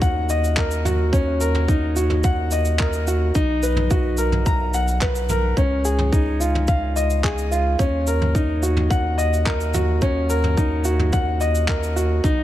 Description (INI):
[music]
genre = piano and strings electronica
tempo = 108 BPM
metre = 4/4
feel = straight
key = Eb minor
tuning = A4 = 437 Hz
[part]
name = warm upright piano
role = riff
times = 0.0-12.4 s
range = Db4 to A#5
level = -22 LUFS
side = equal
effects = ping-pong delay
[part]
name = round analog bass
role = bass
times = 0.0-12.4 s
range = B1 to Eb2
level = -22 LUFS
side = equal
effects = sidechain pumping
[part]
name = electronic kick drum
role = drums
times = 0.0-12.3 s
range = none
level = -20 LUFS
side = equal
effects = none
[part]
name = vintage brush drum kit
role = drums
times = 0.0-12.4 s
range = handclaps, shaker, toms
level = -29 LUFS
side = right 1 dB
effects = none
[sound]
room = little or no reverb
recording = dark, warm production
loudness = -18 LUFS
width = side -13 dB against mid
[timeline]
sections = 0.0-12.4 A section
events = none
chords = 0.0 Ebm7; 3.4 Bmaj7; 5.6 Dbadd9; 7.8 Ebm7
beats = 0.02 0.57 | 1.13 1.68 2.24 2.79 | 3.35 3.91 4.46 5.02 | 5.57 6.13 6.68 7.24 | 7.79 8.35 8.91 9.46 | 10.02 10.57 11.13 11.68 | 12.24